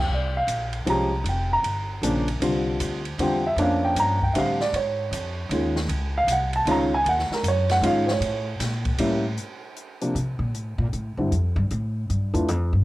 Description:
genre	modal jazz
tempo	155 BPM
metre	3/4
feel	swing 64% on 8ths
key	C phrygian, D minor from 9.4 s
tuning	A4 = 440 Hz
part	dark baby grand piano	accompaniment	0.0-12.5 s	C3 to Bb5	-23 LUFS	equal	cassette tape
part	upright bass	bass	0.0-12.8 s	F1 to C3	-26 LUFS	equal	transformer saturation
part	open jazz drum kit	drums	0.5-12.6 s	hi-hat, kick drum, ride cymbal, snare drum	-32 LUFS	right 1 dB	cassette tape
room	light reverb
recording	home recording on cassette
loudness	-22 LUFS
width	side -17 dB against mid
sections	0.1-9.4 A section; 9.4-12.8 A section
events	upright bass solo 9.4-12.8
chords	0.1 C9sus4; 4.7 Ab7sus4; 8.2 A7b9; 9.4 Dm9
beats	| 0.10 0.48 0.87 | 1.26 1.65 2.03 | 2.42 2.81 3.19 | 3.58 3.97 4.35 | 4.74 5.13 5.51 | 5.90 6.29 6.67 | 7.06 7.44 7.83 | 8.22 8.60 8.99 | 9.38 9.76 10.15 | 10.54 10.93 11.31 | 11.70 12.09 12.47

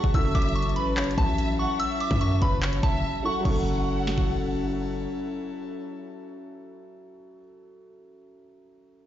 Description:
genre	hip hop, trap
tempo	145 BPM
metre	4/4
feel	half-time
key	F# minor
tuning	A4 = 444 Hz
part	soft synth bell	melody	0.0-4.7 s	A5 to E6	-31 LUFS	equal	chorus, tape echo
part	warm studio violin section	second line	0.0-4.7 s	B4 to F#5	-34 LUFS	equal	tape echo
part	dark concert grand piano	accompaniment	0.0-9.1 s	F#3 to A4	-35 LUFS	right 2 dB	none
part	airy breathy pad	sustained chords	0.0-7.4 s	F#3 to A5	-32 LUFS	left 3 dB	chorus
part	hard-hitting 808-style bass	bass	0.0-5.1 s	F#1 to F#2	-27 LUFS	equal	none
part	trap drum kit	drums	0.0-4.3 s	crash cymbal, handclaps, hi-hat, kick drum, snare drum	-26 LUFS	equal	none
room	digital ambience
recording	played on a big sound system in a bare room, large studio reverb, nothing above 7.6 kHz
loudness	-23 LUFS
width	side -12 dB against mid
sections	0.0-3.5 A section; 3.5-6.8 B section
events	break 3.0-3.5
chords	0.0 F#m7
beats	| 0.14 0.56 0.97 1.38 | 1.80 2.21 2.62 3.04 | 3.45 3.87 4.28 4.69 | 5.11 5.52 5.93 6.35

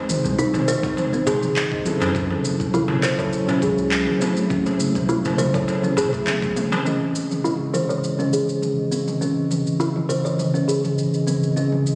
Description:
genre	organic downtempo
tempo	102 BPM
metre	4/4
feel	swing 53% on 16ths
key	C# harmonic minor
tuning	A4 = 440 Hz
part	mellow tine electric piano	accompaniment	0.0-11.9 s	E3 to D#5	-29 LUFS	equal	sidechain pumping, digital delay
part	kalimba	arpeggios	0.0-11.9 s	B#3 to C#5	-25 LUFS	equal	low-pass filter, digital delay
part	round analog bass	bass	0.1-6.7 s	E1 to F#2	-31 LUFS	equal	sidechain pumping
part	organic electronic drum kit	drums	0.1-11.9 s	handclaps, shaker, toms	-30 LUFS	equal	none
part	darbuka	percussion	0.2-6.8 s	none	-31 LUFS	equal	none
part	electronic kick drum	drums	0.8-6.5 s	none	-33 LUFS	equal	none
part	warbly tape-like pad	sustained chords	7.2-11.9 s	C#3 to D#5	-26 LUFS	equal	chorus, built-in reverb, vintage 12-bit sampler grit, sidechain pumping
room	moderate lush hall reverb, RT60 2.6 s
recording	recorded on a phone in the room, studio reverb, compression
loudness	-21 LUFS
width	mono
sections	0.0-6.9 A section; 6.9-11.9 B section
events	drum fill 6.3-6.9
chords	0.0 G#; 2.2 F#m7; 6.9 C#madd9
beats	0.39 0.97 1.56 | 2.15 2.74 3.33 3.92 | 4.50 5.09 5.68 6.27 | 6.86 7.45 8.03 8.62 | 9.21 9.80 10.39 10.97 | 11.56

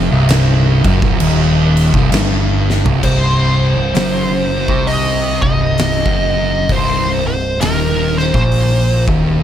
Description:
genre	stoner and doom metal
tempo	66 BPM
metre	4/4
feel	swing 61% on 8ths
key	unclear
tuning	A4 = 440 Hz
part	thick fuzz guitar	riff	0.0-9.4 s	C2 to C3	-18 LUFS	left 7 dB	distortion
part	thick fuzz guitar	riff	0.0-9.4 s	C2 to C3	-17 LUFS	right 6 dB	distortion
part	growling picked electric bass	bass	0.0-9.4 s	C1 to C2	-19 LUFS	equal	overdrive
part	oversized low-tuned drum kit	drums	0.3-9.2 s	crash cymbal, hi-hat, kick drum, snare drum, toms	-18 LUFS	equal	none
part	fuzz lead guitar	melody	3.0-9.0 s	Bb4 to Eb5	-18 LUFS	equal	wah, distortion, ping-pong delay
room	small room reverb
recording	none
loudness	-12 LUFS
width	side -10 dB against mid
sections	0.0-3.0 A section; 3.0-9.4 B section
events	drum fill 2.6-3.0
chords	0.0 Cm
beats	0.28 1.20 2.11 | 3.03 3.94 4.86 5.77 | 6.69 7.60 8.52 9.43

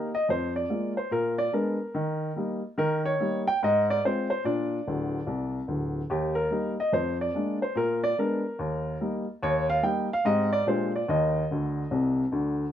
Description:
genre	jazz, stride piano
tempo	144 BPM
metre	4/4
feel	swing 64% on 8ths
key	Eb major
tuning	A4 = 438 Hz
part	warm upright piano	solo	0.0-12.6 s	D1 to G5	-25 LUFS	equal	none
room	moderate studio reverb, RT60 0.8 s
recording	none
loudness	-25 LUFS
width	side -10 dB against mid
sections	0.0-12.7 A section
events	upright piano fill 4.9-6.1, 11.5-12.7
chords	0.3 Bb7/F; 1.1 Bb7b9; 1.9 Eb; 3.6 Ab6; 4.4 Bb; 6.1 Eb; 6.9 Bb7/F; 7.8 Bb7b9; 8.6 Eb; 10.2 Abmaj7; 10.7 Bb13; 11.1 Cmadd9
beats	0.28 0.70 | 1.11 1.53 1.94 2.36 | 2.77 3.19 3.60 4.02 | 4.44 4.85 5.27 5.68 | 6.10 6.51 6.93 7.34 | 7.76 8.17 8.59 9.00 | 9.42 9.84 10.25 10.66 | 11.08 11.49 11.91 12.32

